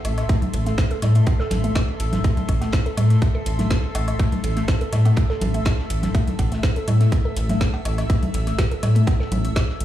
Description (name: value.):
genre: minimal techno.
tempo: 123 BPM.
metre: 4/4.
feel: straight.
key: A minor.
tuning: A4 = 440 Hz.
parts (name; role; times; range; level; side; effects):
rubbery square bass; bass; 0.0-9.8 s; A1 to A2; -20 LUFS; equal; sidechain pumping.
cloth-damped thuddy drum kit; drums; 0.0-9.8 s; ride cymbal, snare drum; -39 LUFS; right 3 dB; sidechain pumping on cymbals, high-pass filter on cymbals, high-pass filter on snare, high-pass filter on room.
garage drum kit; drums; 0.0-9.8 s; hi-hat, snare drum; -31 LUFS; equal; none.
woodblock, congas and cowbell; percussion; 0.0-9.7 s; none; -29 LUFS; left 2 dB; overdrive, digital delay.
bubbling stepped-filter texture; texture; 0.0-9.8 s; A4; -37 LUFS; equal; chorus, built-in reverb, sidechain pumping.
granular cloud pad; texture; 0.0-9.8 s; A4 to E6; -32 LUFS; right 1 dB; built-in reverb, sidechain pumping.
hollow square pluck; riff; 0.3-9.5 s; G3 to A4; -30 LUFS; equal; chorus, sidechain pumping, tape echo.
electronic kick drum; drums; 0.3-9.7 s; none; -20 LUFS; equal; none.
room: light reverb.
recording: played on a big sound system in a bare room, large studio reverb.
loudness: -18 LUFS.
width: side -12 dB against mid.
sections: 0.0-9.8 A section.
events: none.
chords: 0.0 Am.